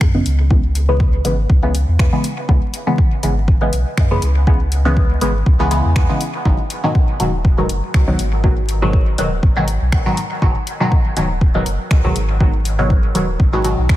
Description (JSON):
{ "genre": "dub techno", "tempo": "121 BPM", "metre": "4/4", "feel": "swing 55% on 16ths", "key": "C# minor", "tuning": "A4 = 440 Hz", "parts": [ { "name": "warm sub bass", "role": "bass", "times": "0.0-14.0 s", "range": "D#1 to F#2", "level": "-18 LUFS", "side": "equal", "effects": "sidechain pumping" }, { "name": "electronic kick drum", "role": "drums", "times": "0.0-14.0 s", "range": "none", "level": "-14 LUFS", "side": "equal", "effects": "small room reverb" }, { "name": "punchy analog drum machine", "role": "drums", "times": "0.0-14.0 s", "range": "finger snaps, hi-hat", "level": "-27 LUFS", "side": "left 1 dB", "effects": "overdrive, soft clipping on snare, small room reverb, dub echo" }, { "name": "filtered dub chord stab", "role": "stabs", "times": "0.1-14.0 s", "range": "G#2 to B3", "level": "-19 LUFS", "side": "equal", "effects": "chorus, phaser, sidechain pumping, dub echo" } ], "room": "digital ambience", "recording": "dense, heavily limited modern master, vinyl crackle", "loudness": "-14 LUFS", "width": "side -14 dB against mid", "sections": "0.0-14.0 A section", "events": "none", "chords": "0.0 C#m7; 6.5 G#m7" }